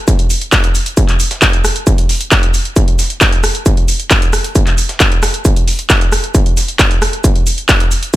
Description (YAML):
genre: techno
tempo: 134 BPM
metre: 4/4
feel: straight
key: none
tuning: none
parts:
  - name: breakbeat sampler-style drum kit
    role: drums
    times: 0.1-8.2 s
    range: hi-hat, shaker, snare drum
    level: -24 LUFS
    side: equal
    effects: high-pass filter on snare, high-pass filter on perc, high-pass filter on hats
  - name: electronic kick drum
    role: drums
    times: 0.1-8.2 s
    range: none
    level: -12 LUFS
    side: equal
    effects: distortion
  - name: techno drum kit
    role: drums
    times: 0.1-8.2 s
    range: handclaps, hi-hat, rim click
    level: -15 LUFS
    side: equal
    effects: none
room: digital ambience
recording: none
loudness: -10 LUFS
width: side -16 dB against mid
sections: 0.0-8.2 A section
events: none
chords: none